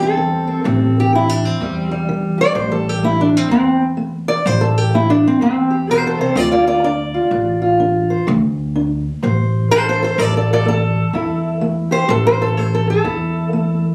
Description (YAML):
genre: acoustic country blues, solo or duo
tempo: 126 BPM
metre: 4/4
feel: swing 61% on 8ths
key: A minor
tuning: A4 = 442 Hz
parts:
  - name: fingerpicked steel-string acoustic guitar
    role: melody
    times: 0.0-13.9 s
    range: E2 to D5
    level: -18 LUFS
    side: equal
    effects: none
  - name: upright bass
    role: bass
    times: 0.0-13.9 s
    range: A1 to E2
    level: -21 LUFS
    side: equal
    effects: none
room: moderate studio reverb, RT60 0.7 s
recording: recorded on a phone in the room, club reverb, compression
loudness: -16 LUFS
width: mono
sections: 0.0-13.9 A section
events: steel-string acoustic guitar solo 0.0-13.9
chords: 0.0 Am7; 6.4 Dm7; 10.2 A5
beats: 0.18 | 0.65 1.13 1.61 2.08 | 2.56 3.04 3.51 3.99 | 4.47 4.94 5.42 5.89 | 6.37 6.85 7.33 7.80 | 8.28 8.76 9.23 9.71 | 10.19 10.66 11.14 11.62 | 12.10 12.58 13.05 13.53